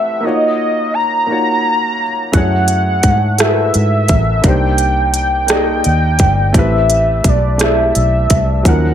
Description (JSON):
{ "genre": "slow six-eight R&B", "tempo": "57 BPM (dotted quarters)", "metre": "6/8", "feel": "straight", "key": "unclear", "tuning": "A4 = 440 Hz", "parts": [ { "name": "warm velvety synth lead", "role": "melody", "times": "0.0-8.9 s", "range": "D5 to A#5", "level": "-16 LUFS", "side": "equal", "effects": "chorus, digital delay" }, { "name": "warm concert grand piano", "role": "accompaniment", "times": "0.0-8.9 s", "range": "E#3 to Eb5", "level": "-19 LUFS", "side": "equal", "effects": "none" }, { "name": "vintage muted fingered electric bass", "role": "bass", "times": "2.3-8.9 s", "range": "G1 to G#2", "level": "-15 LUFS", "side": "equal", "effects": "none" }, { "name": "organic electronic drum kit", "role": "drums", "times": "2.3-8.8 s", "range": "hi-hat, kick drum, rim click", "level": "-15 LUFS", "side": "equal", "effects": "overdrive" } ], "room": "light reverb, digital ambience", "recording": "none", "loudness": "-11 LUFS", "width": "side -10 dB against mid", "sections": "0.0-8.9 A section", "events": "none", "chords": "0.2 D#m9; 2.3 F#m9; 4.4 Cm9; 6.5 Am9" }